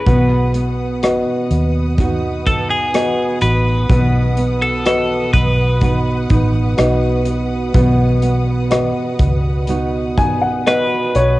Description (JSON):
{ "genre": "pop ballad", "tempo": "62 BPM", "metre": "4/4", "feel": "straight", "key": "unclear", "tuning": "A4 = 440 Hz", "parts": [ { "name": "twelve-string electric guitar", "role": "melody", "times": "0.0-11.4 s", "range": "G#4 to B4", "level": "-21 LUFS", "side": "equal", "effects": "cassette tape, tape echo" }, { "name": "warm upright piano", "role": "accompaniment", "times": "0.0-11.4 s", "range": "B3 to G#5", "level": "-20 LUFS", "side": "left 2 dB", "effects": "cassette tape" }, { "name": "clear studio string section", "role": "sustained chords", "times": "0.0-11.4 s", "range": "B4 to D#6", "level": "-29 LUFS", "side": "right 1 dB", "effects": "cassette tape" }, { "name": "nylon-string guitar", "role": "arpeggios", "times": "0.0-11.4 s", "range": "B2 to F#4", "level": "-22 LUFS", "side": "right 3 dB", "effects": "cassette tape" }, { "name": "vintage muted fingered electric bass", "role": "bass", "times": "0.0-11.4 s", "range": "A1 to D#2", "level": "-17 LUFS", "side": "equal", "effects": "none" }, { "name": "modern studio drum kit", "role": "drums", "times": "0.1-11.4 s", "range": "hi-hat, kick drum, rim click", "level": "-20 LUFS", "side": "equal", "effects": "cassette tape" } ], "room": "small room ambience", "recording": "home recording on cassette, nothing above 10.8 kHz", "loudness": "-13 LUFS", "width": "side -17 dB against mid", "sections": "0.0-11.4 A section", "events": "upright piano fill 9.7-11.4", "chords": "0.1 B", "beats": "| 0.06 1.02 1.98 2.94 | 3.90 4.86 5.82 6.78 | 7.75 8.71 9.68 10.67" }